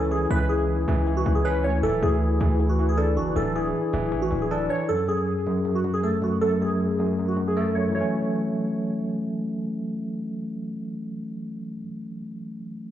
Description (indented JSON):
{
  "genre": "hip hop, trap",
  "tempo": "157 BPM",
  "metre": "4/4",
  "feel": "half-time",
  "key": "F# minor",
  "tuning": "A4 = 440 Hz",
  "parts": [
    { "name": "glassy digital keys", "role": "melody", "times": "0.0-9.1 s", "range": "F#4 to C#5", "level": "-27 LUFS", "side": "equal", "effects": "chorus, tape echo" },
    { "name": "bell-like tine electric piano", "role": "accompaniment", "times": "0.0-12.9 s", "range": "F#2 to D4", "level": "-26 LUFS", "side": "equal", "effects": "medium stereo tremolo" },
    { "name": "hard-hitting 808-style bass", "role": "bass", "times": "0.0-4.7 s", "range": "D1 to D2", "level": "-24 LUFS", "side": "equal", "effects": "none" }
  ],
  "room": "light reverb",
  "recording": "dry, gritty hardware recording, low-pass filter, studio ambience",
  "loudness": "-22 LUFS",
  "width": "side -11 dB against mid",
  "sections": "0.0-4.9 A section; 4.9-7.9 B section; 7.9-11.0 C section",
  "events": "none",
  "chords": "0.0 C#m; 1.8 Dsus2; 4.9 F#m; 7.9 F#m7"
}